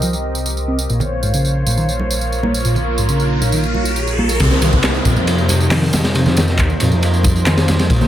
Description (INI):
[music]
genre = breakbeat, breaks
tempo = 137 BPM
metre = 4/4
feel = straight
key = unclear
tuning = A4 = 440 Hz
[part]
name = phased analog pad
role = sustained chords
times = 0.0-8.1 s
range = C3 to Eb5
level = -22 LUFS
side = equal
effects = phaser, chorus, sidechain pumping
[part]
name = hollow-body short-scale picked electric bass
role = riff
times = 0.0-8.1 s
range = Ab2 to C4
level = -20 LUFS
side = equal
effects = overdrive, ping-pong delay
[part]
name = dark detuned saw bass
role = bass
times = 0.0-8.1 s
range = Bb1 to F2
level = -19 LUFS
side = equal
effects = none
[part]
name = electronic tambourine and handclaps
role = drums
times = 0.0-8.1 s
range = none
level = -24 LUFS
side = right 2 dB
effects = none
[part]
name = downlifter and riser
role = sound effects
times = 2.2-7.9 s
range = none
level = -24 LUFS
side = left 1 dB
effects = none
[part]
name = congas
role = percussion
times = 1.0-8.1 s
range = none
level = -26 LUFS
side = right 3 dB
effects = none
[part]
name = crunchy breakbeat drum kit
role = drums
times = 4.4-8.1 s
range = hi-hat, kick drum, ride cymbal, snare drum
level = -18 LUFS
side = equal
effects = none
[sound]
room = light reverb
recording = none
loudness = -14 LUFS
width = side -12 dB against mid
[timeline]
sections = 0.0-4.4 A section; 4.4-8.1 B section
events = riser 2.2-4.4; drop 4.4-8.1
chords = 0.0 Cm7; 0.9 Bbmadd9; 4.4 Cm7